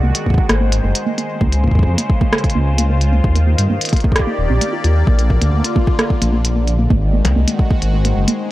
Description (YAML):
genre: IDM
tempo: 131 BPM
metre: 4/4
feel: straight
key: unclear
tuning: A4 = 440 Hz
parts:
  - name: phased analog pad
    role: sustained chords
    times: 0.0-8.5 s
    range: Db3 to D5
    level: -22 LUFS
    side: left 1 dB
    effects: phaser, chorus
  - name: warbly dusty pluck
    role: arpeggios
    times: 0.0-8.4 s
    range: A3 to F4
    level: -23 LUFS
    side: right 2 dB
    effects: chorus, tape echo
  - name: dark detuned saw bass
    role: bass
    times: 0.0-8.3 s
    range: Eb1 to G2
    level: -15 LUFS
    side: equal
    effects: none
  - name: glitchy drum kit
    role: drums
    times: 0.1-8.4 s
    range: hi-hat, percussion blips, rim click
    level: -20 LUFS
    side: equal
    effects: none
  - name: electronic kick drum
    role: drums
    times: 0.3-7.8 s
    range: none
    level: -15 LUFS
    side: equal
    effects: none
room: little or no reverb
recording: dry, gritty hardware recording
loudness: -13 LUFS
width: side -16 dB against mid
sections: 0.0-8.5 A section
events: filter sweep on synth pluck 0.0-8.5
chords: 0.0 Ab7; 1.4 Dbmaj7; 3.2 Ebmaj7; 5.1 Bb; 6.9 Ab7